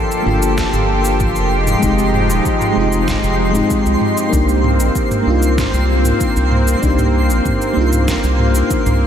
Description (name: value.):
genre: sunset chillout.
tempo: 96 BPM.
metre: 4/4.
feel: straight.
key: C minor.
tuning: A4 = 440 Hz.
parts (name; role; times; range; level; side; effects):
mellow FM electric piano; accompaniment; 0.0-9.1 s; Ab3 to A4; -19 LUFS; moving between left 4 dB and right 4 dB; chorus, auto-pan, cassette tape, tape echo.
lush unison pad; sustained chords; 0.0-9.1 s; F3 to A4; -19 LUFS; equal; chorus.
twinkling granular texture; texture; 0.0-9.1 s; C6; -26 LUFS; equal; built-in reverb.
smooth R&B drum kit; drums; 0.1-9.0 s; shaker, snare drum, toms; -23 LUFS; equal; studio reverb.
round analog bass; bass; 0.3-9.1 s; Eb1 to C2; -16 LUFS; equal; none.
electronic kick drum; drums; 0.6-8.8 s; none; -22 LUFS; equal; studio reverb.
room: moderate huge ambient reverb, RT60 7.5 s.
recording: dreamy mix soaked in reverb.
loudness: -13 LUFS.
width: side -9 dB against mid.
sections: 0.0-9.1 A section.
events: none.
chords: 0.0 Gm9; 1.5 Fm9; 4.3 Cm9.